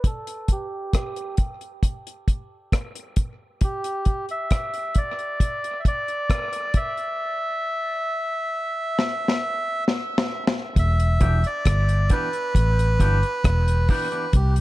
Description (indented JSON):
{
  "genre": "dub reggae",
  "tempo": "67 BPM",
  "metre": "4/4",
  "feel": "straight",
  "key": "E minor",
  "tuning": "A4 = 439 Hz",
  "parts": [
    { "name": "melodica", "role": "melody", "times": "0.0-14.6 s", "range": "G4 to E5", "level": "-26 LUFS", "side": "right 1 dB", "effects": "low-pass filter, tape echo" },
    { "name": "deep reggae drum kit", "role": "drums", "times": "0.0-14.6 s", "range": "hi-hat, kick drum, rim click, snare drum", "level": "-22 LUFS", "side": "equal", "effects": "none" },
    { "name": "vintage muted fingered electric bass", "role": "bass", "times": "10.8-14.6 s", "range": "E1 to C2", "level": "-19 LUFS", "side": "equal", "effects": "none" },
    { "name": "electric guitar with an envelope filter", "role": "accompaniment", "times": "11.2-14.3 s", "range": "E3 to G4", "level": "-31 LUFS", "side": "equal", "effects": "high-pass filter, tape echo" }
  ],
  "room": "small room ambience",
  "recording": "dark, warm production",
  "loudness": "-21 LUFS",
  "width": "side -17 dB against mid",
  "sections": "0.0-10.8 A section; 10.8-14.6 B section",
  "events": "break 0.0-10.8; filter sweep 0.0-10.8; drum fill 9.0-10.8",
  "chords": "0.0 N.C.; 10.8 Em7",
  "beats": "| 0.04 0.93 1.82 2.72 | 3.61 4.51 5.40 6.29 | 7.19 8.08 8.98 9.87 | 10.76 11.66 12.55 13.44 | 14.34"
}